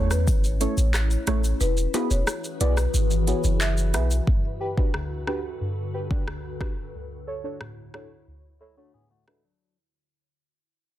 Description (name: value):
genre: dancehall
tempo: 90 BPM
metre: 4/4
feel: straight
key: unclear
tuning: A4 = 438 Hz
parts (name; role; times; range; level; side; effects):
- marimba with medium mallets; melody; 0.0-4.1 s; B4 to E5; -33 LUFS; left 2 dB; tape echo
- deep mellow chord stab; accompaniment; 0.0-9.4 s; D2 to D5; -30 LUFS; right 1 dB; chorus, phaser, low-pass filter
- glassy FM pad; sustained chords; 0.1-9.6 s; D2 to C#5; -34 LUFS; left 3 dB; ensemble chorus, built-in reverb, phaser, sidechain pumping, low-pass filter
- warm 808-style bass; bass; 0.0-4.2 s; E1 to E2; -22 LUFS; equal; none
- afro-pop drum kit; drums; 0.1-9.4 s; handclaps, hi-hat, kick drum, rim click, shaker; -26 LUFS; equal; none
- tube shaker and timbales; percussion; 0.1-4.3 s; none; -37 LUFS; left 5 dB; none
- electric guitar at the edge of break-up; arpeggios; 8.6-9.8 s; F#3 to G#4; -68 LUFS; left 6 dB; low-pass filter
room: digital ambience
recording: dense, heavily limited modern master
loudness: -22 LUFS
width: side -13 dB against mid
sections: 0.0-4.3 A section; 4.3-9.6 B section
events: kick muted 1.6-4.3; fade-out 4.3-9.6; filter sweep 4.3-9.6; break 8.3-9.6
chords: 0.0 A; 1.6 Eadd9; 4.3 Gmaj7; 6.9 Dmaj7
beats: 0.27 0.94 | 1.61 2.27 2.94 3.61 | 4.27 4.94 5.61 6.27 | 6.94 7.61 8.27 8.94